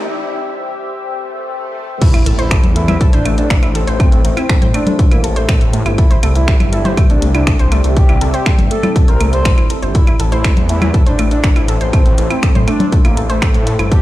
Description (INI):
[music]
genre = melodic techno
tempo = 121 BPM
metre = 4/4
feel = straight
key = A minor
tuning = A4 = 439 Hz
[part]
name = deep dark ambient pad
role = sustained chords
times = 0.0-14.0 s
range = A3 to E5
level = -24 LUFS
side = left 1 dB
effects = chorus, built-in reverb, sidechain pumping
[part]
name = swelling detuned saw bass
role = bass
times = 0.0-13.9 s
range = G1 to A2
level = -16 LUFS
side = equal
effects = sidechain pumping, high-pass filter
[part]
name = riser, swell and impact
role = sound effects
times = 0.0-4.0 s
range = none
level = -24 LUFS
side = equal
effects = none
[part]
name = expressive portamento lead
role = melody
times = 2.0-14.0 s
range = A3 to C5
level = -22 LUFS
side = equal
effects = chorus, cassette tape, sidechain pumping, ping-pong delay
[part]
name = warbly dusty pluck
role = arpeggios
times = 2.0-14.0 s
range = A3 to C6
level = -22 LUFS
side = equal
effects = chorus, sidechain pumping, dub echo
[part]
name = electronic kick drum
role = drums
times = 2.0-14.0 s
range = none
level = -12 LUFS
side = equal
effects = none
[part]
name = punchy analog drum machine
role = drums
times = 2.0-14.0 s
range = claves, congas, crash cymbal, finger snaps, hi-hat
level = -21 LUFS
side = left 1 dB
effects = sidechain pumping on hats, sidechain pumping on toms, sidechain pumping on perc, sidechain pumping on cymbals
[sound]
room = light reverb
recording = played on a big sound system in a bare room, large studio reverb, high-pass filter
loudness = -10 LUFS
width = side -16 dB against mid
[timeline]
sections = 0.0-2.0 A section; 2.0-14.0 B section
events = build-up 0.0-2.0; break 0.0-2.0; swell 1.3-2.0; drop 2.0-14.0; impact 2.0-4.0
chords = 0.0 C; 2.0 Am7; 6.0 C; 9.9 Am